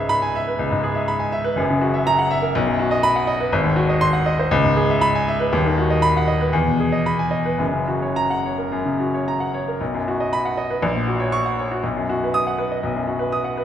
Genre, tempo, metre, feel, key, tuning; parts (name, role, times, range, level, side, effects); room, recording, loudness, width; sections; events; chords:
classical, virtuoso piano study; 104-125 BPM; 4/4; rubato; B major; A4 = 440 Hz
clear baby grand piano; solo; 0.0-13.6 s; D#1 to D#6; -18 LUFS; equal
wet concert hall reverb, RT60 1.9 s; -18 LUFS; side -10 dB against mid
0.0-9.8 A section; 9.8-13.6 A section
0.0 C#m7; 1.6 F#7; 2.6 B; 3.5 G#7; 4.5 C#m7; 5.5 B/D#; 6.5 Emaj7; 7.6 F#; 9.8 B; 10.8 F#/A#; 11.8 B